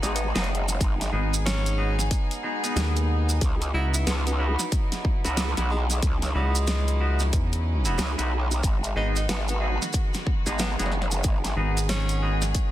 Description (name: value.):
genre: glitch hop.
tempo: 92 BPM.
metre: 4/4.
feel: swing 61% on 16ths.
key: C# minor.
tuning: A4 = 437 Hz.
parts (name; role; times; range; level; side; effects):
clear tenor saxophone; melody; 0.0-12.4 s; G#3 to E4; -35 LUFS; equal; digital delay.
rich chamber string section; sustained chords; 0.0-12.7 s; D#3 to G#4; -34 LUFS; equal; sidechain pumping.
clean electric guitar; stabs; 0.0-12.4 s; B3 to G#4; -32 LUFS; right 1 dB; sidechain pumping, digital delay.
growl bass; bass; 0.0-11.5 s; F#1 to C#2; -26 LUFS; equal; chorus, overdrive.
dubstep drum kit; drums; 0.0-12.7 s; hi-hat, snare drum; -31 LUFS; equal; none.
maracas; percussion; 0.0-12.7 s; none; -34 LUFS; right 3 dB; none.
electronic kick drum; drums; 0.8-12.7 s; none; -25 LUFS; equal; none.
rubbery square bass; bass; 1.1-12.5 s; G#1 to E2; -24 LUFS; equal; none.
room: digital ambience.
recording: dense, heavily limited modern master.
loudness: -22 LUFS.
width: side -14 dB against mid.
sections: 0.0-12.7 A section.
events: none.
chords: 0.0 G#m7; 3.4 C#m11; 8.6 G#m7.